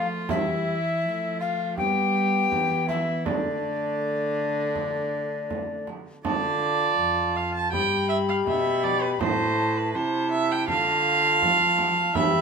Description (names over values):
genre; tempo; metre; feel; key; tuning
classical, renaissance-style consort dance; 81 BPM; 4/4; straight; D dorian; A4 = 440 Hz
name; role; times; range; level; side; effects
mellow hollow tenor recorder; melody; 0.0-12.4 s; D5 to B5; -27 LUFS; left 4 dB; none
rich viola; second line; 0.0-12.4 s; D4 to A5; -26 LUFS; right 4 dB; none
clear trombone; accompaniment; 0.0-12.4 s; G3 to G4; -30 LUFS; left 1 dB; none
rich cello; bass; 0.0-12.4 s; F2 to G3; -30 LUFS; right 2 dB; none
frame drum; percussion; 0.3-12.4 s; none; -31 LUFS; right 5 dB; none
room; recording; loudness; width
moderate stone room reverb, RT60 0.9 s; minimal, uncompressed stereo recording; -22 LUFS; side -5 dB against mid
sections
0.0-6.3 A section; 6.3-12.4 A section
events
none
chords
0.3 Em; 1.8 G; 3.3 D5; 6.3 Dm; 7.7 G; 9.2 Am; 10.7 Dm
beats
| 0.30 1.04 1.78 2.52 | 3.26 4.01 4.76 5.51 | 6.25 7.00 7.73 8.47 | 9.21 9.95 10.68 11.42 | 12.16